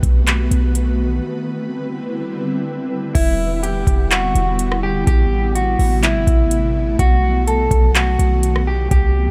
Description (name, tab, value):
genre	hip hop, atmospheric cloud-rap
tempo	125 BPM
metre	4/4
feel	half-time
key	E minor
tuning	A4 = 440 Hz
part	ethereal airy pad	sustained chords	0.0-9.3 s	C3 to F#5	-25 LUFS	equal	ensemble chorus, built-in reverb, sidechain pumping
part	clean 808-style bass	bass	0.0-9.3 s	E1 to C3	-20 LUFS	equal	none
part	booming analog drum machine	drums	0.0-9.1 s	crash cymbal, handclaps, hi-hat, kick drum, rim click	-19 LUFS	equal	overdrive
part	electric guitar at the edge of break-up	melody	3.1-9.3 s	E4 to A4	-23 LUFS	equal	low-pass filter, tape echo
room	digital ambience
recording	none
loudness	-17 LUFS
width	mono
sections	0.0-3.2 A section; 3.2-9.3 B section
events	break 1.2-3.2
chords	0.0 B7; 1.2 Cmaj9; 3.2 Em9; 5.1 Am9; 7.0 B7